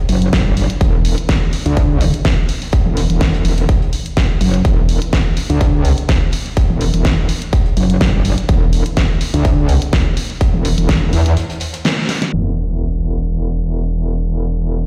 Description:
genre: bass house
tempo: 125 BPM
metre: 4/4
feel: swing 54% on 16ths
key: E minor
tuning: A4 = 438 Hz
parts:
  - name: metallic wobble bass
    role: bass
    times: 0.1-14.9 s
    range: E1 to E2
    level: -17 LUFS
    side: equal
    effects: chorus, overdrive, sidechain pumping
  - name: big-room dance drum kit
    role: drums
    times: 0.1-14.8 s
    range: crash cymbal, hi-hat, snare drum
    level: -24 LUFS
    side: equal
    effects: none
  - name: open jazz drum kit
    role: drums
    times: 0.1-12.2 s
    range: hi-hat, snare drum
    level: -37 LUFS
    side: equal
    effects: none
  - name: electronic kick drum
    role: drums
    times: 0.3-11.0 s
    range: none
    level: -18 LUFS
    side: equal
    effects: none
  - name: sub drop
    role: sound effects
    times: 12.3-14.2 s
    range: none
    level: -29 LUFS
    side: equal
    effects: none
room: light reverb, studio reverb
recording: played on a big sound system in a bare room, large studio reverb, low-pass filter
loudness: -16 LUFS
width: mono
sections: 0.0-12.3 A section; 12.3-14.9 B section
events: break 11.4-12.3; band accent 11.8; drum fill 12.1; impact 12.3-14.2; filter sweep 12.3-14.9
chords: none

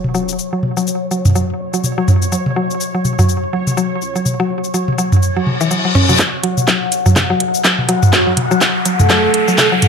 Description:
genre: minimal techno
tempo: 124 BPM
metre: 4/4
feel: swing 58% on 16ths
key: F# minor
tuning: A4 = 435 Hz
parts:
  - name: electronic toms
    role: percussion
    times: 0.0-9.9 s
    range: none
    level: -16 LUFS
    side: right 1 dB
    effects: none
  - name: sub drop, reverse cymbal and riser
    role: sound effects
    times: 0.0-0.4, 5.4-9.9 s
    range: none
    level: -21 LUFS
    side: left 2 dB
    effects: none
  - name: bubbling stepped-filter texture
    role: texture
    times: 0.0-9.9 s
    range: C#5 to F#5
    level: -23 LUFS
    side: left 2 dB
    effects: chorus, built-in reverb, sidechain pumping
  - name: mallet-like synth pluck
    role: riff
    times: 0.1-9.8 s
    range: E3 to C#4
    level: -18 LUFS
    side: left 2 dB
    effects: chorus, sidechain pumping, digital delay
  - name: saturated sub bass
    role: bass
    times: 0.1-6.1 s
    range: F#1 to F#2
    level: -36 LUFS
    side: equal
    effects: none
  - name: house drum kit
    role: drums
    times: 0.1-9.9 s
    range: handclaps, hi-hat, shaker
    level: -18 LUFS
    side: left 1 dB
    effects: none
  - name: electronic kick drum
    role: drums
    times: 6.2-9.7 s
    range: none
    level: -18 LUFS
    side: equal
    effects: high-pass filter on kick
  - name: breathy flute-like synth lead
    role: melody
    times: 8.1-9.7 s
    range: F#4 to A4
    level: -16 LUFS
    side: right 3 dB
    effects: lush chorus, ping-pong delay
room: moderate digital room reverb, RT60 1.1 s, digital ambience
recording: none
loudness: -12 LUFS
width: side -6 dB against mid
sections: 0.0-6.2 A section; 6.2-9.9 B section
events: impact 0.0-0.4; filter sweep on synth arpeggio sound 0.0-6.2; reverse cymbal 5.4-6.2; build-up 6.2-9.9; drum fill 6.2-9.9; riser 6.2-9.9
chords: 0.0 F#5; 6.2 N.C.

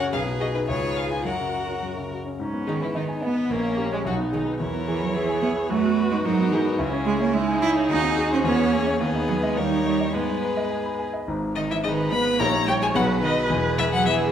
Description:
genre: quick classical-period movement for piano quintet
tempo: 108 BPM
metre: 2/4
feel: straight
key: G# minor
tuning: A4 = 440 Hz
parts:
  - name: rich violin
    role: melody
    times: 0.0-14.1 s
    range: G#3 to B5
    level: -28 LUFS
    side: left 4 dB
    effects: none
  - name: dark violin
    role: second line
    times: 0.0-14.3 s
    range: G#3 to C#5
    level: -31 LUFS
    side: left 2 dB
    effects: none
  - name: rich cello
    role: second line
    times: 0.0-14.3 s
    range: D#3 to A#4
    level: -26 LUFS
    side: right 5 dB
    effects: none
  - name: clear concert grand piano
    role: accompaniment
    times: 0.0-14.3 s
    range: E1 to B5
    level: -26 LUFS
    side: left 1 dB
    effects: none
  - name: rich viola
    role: accompaniment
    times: 0.0-14.3 s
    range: B3 to C#5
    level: -29 LUFS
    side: right 2 dB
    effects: none
room: wet recital hall reverb, RT60 1.5 s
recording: none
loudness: -21 LUFS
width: side -9 dB against mid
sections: 0.0-2.4 A section; 2.4-11.3 B section; 11.3-14.3 B section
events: none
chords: 0.1 G#m/B; 0.7 C#7; 1.2 F#; 2.4 G#m; 3.5 A#m7; 4.1 G#m/B; 4.6 E; 5.7 B7/F#; 6.3 E/G# (rootless); 6.8 C#m; 7.9 G#7/D#; 8.5 C#m/E; 9.0 G#m/D#; 9.6 D#7; 10.1 G#m; 12.4 D#7/A#; 13.0 G#m/B; 13.5 E

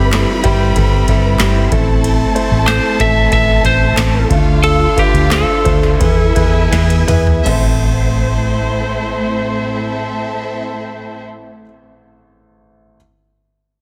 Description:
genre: piano-driven pop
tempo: 80-94 BPM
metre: 4/4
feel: straight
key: A minor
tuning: A4 = 436 Hz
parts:
  - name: lightly driven lead guitar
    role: melody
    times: 0.0-6.7 s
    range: G4 to E5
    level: -19 LUFS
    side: equal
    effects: delay
  - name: warm symphonic violin section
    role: second line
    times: 0.0-11.2 s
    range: C4 to B5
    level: -25 LUFS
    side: equal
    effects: none
  - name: clear upright piano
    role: accompaniment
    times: 0.0-13.0 s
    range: A1 to C5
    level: -23 LUFS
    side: equal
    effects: none
  - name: warm studio string section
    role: sustained chords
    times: 0.0-11.2 s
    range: A2 to G#5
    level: -24 LUFS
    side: equal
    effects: none
  - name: vintage muted fingered electric bass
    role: bass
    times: 0.0-11.6 s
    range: G1 to E2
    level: -18 LUFS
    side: equal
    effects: none
  - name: booming analog drum machine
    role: drums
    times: 0.1-7.6 s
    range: crash cymbal, handclaps, hi-hat, kick drum, ride cymbal, snare drum, toms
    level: -19 LUFS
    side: equal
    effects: none
room: light reverb, digital ambience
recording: dense, heavily limited modern master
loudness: -14 LUFS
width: mono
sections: 0.0-7.5 A section; 7.5-10.5 B section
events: slowing down 2.0-7.5; drum fill 6.7-7.5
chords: 0.0 C/G; 1.7 Am; 4.3 Dm; 6.0 E; 7.5 Am

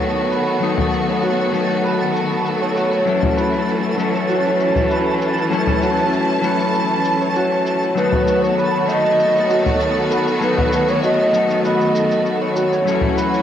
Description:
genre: organic downtempo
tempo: 98 BPM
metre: 4/4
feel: straight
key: unclear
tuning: A4 = 440 Hz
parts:
  - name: clean electric guitar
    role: accompaniment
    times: 0.0-13.4 s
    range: F#3 to A4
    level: -23 LUFS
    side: left 8 dB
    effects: analog chorus, cassette tape, analog delay
  - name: clear studio string section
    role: sustained chords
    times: 0.0-13.4 s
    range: D#3 to A5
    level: -20 LUFS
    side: right 1 dB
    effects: cassette tape, plate reverb
  - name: santur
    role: arpeggios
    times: 0.0-13.4 s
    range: E4 to E5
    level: -21 LUFS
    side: right 1 dB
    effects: low-pass filter, cassette tape, analog delay, plate reverb
  - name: cabasa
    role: drums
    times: 0.0-13.4 s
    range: none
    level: -39 LUFS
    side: left 2 dB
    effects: low-pass filter on hats, cassette tape, low-pass filter on perc, low-pass filter on snare, low-pass filter on room
  - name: twinkling granular texture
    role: texture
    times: 0.0-13.4 s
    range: A5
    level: -28 LUFS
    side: right 2 dB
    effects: built-in reverb, cassette tape, plate reverb
  - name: frame drum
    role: percussion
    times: 0.8-13.1 s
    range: none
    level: -23 LUFS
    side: left 1 dB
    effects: none
  - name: bansuri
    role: melody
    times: 8.0-12.5 s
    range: B4 to E5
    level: -18 LUFS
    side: right 1 dB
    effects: cassette tape, analog delay, plate reverb
room: wet studio ambience, RT60 0.5 s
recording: home recording on cassette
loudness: -15 LUFS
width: side -10 dB against mid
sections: 0.0-13.4 A section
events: none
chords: 0.0 B7; 3.1 F#m7; 8.0 B7; 12.9 F#m7

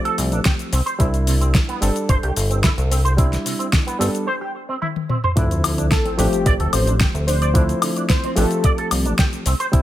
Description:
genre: nu-disco, nu disco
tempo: 110 BPM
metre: 4/4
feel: straight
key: D minor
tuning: A4 = 440 Hz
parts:
  - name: barky reed electric piano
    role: accompaniment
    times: 0.0-9.8 s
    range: F3 to A4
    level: -25 LUFS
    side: equal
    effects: sidechain pumping, digital delay
  - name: electric guitar with an envelope filter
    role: riff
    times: 0.1-9.8 s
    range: C3 to D5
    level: -26 LUFS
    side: right 3 dB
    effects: ensemble chorus, digital delay
  - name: pop drum kit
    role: drums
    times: 0.1-9.8 s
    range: hi-hat, shaker, snare drum, toms, woodblock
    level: -24 LUFS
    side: left 2 dB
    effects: studio ambience
  - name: chorused synth bass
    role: bass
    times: 0.2-9.8 s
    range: G1 to D2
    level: -19 LUFS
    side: equal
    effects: none
  - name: electronic kick drum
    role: drums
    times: 0.5-9.8 s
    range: none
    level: -18 LUFS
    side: equal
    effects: studio ambience
  - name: sub drop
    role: sound effects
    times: 5.4-7.5 s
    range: none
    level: -28 LUFS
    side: equal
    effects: none
  - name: wide unison lead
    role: melody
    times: 5.9-8.8 s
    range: G4 to C5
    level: -25 LUFS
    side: left 1 dB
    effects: ping-pong delay
room: little or no reverb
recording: none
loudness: -16 LUFS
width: side -13 dB against mid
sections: 0.0-5.4 A section; 5.4-9.8 B section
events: break 4.3-5.4; drum fill 4.8-5.4; drop 5.4-9.8; impact 5.4-7.5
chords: 0.0 Dm7 (rootless); 0.7 C; 5.4 Dm7

